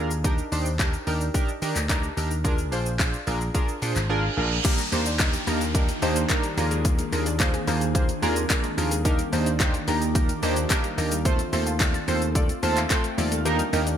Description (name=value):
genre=dance-pop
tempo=109 BPM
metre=4/4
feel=straight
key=Eb major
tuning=A4 = 441 Hz
part: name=chorused retro synth keys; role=accompaniment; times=0.0-13.9 s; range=A3 to A5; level=-27 LUFS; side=right 2 dB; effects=tremolo, sidechain pumping
part: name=vintage slap bass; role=bass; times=0.0-14.0 s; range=Ab1 to Eb3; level=-27 LUFS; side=equal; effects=sidechain pumping
part: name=house drum kit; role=drums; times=0.1-14.0 s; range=crash cymbal, handclaps, hi-hat, kick drum, shaker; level=-25 LUFS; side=equal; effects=gated reverb
part: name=reverse cymbal and downlifter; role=sound effects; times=3.9-9.1 s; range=none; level=-32 LUFS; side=right 2 dB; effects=none
part: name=ethereal airy pad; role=sustained chords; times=5.4-14.0 s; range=Eb3 to Ab4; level=-33 LUFS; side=right 1 dB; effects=none
part: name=analog pluck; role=arpeggios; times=4.6-14.0 s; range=Eb3 to C6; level=-36 LUFS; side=left 5 dB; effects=chorus, sidechain pumping, digital delay
part: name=group handclap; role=percussion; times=5.2-13.0 s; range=none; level=-38 LUFS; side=right 5 dB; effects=none
room=light reverb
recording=bright 1980s-style digital production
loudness=-22 LUFS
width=side -9 dB against mid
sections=0.0-4.6 A section; 4.6-14.0 B section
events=reverse cymbal 3.9-4.6; silent gap 4.1-4.6; synth keys fill 12.4-13.5; kick muted 13.5-14.0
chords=0.2 Ebmaj7; 2.4 Bb7; 4.6 Ebmaj7; 6.6 Bb7/Eb; 9.1 Ebmaj7; 11.3 F/Eb; 13.5 Ebmaj7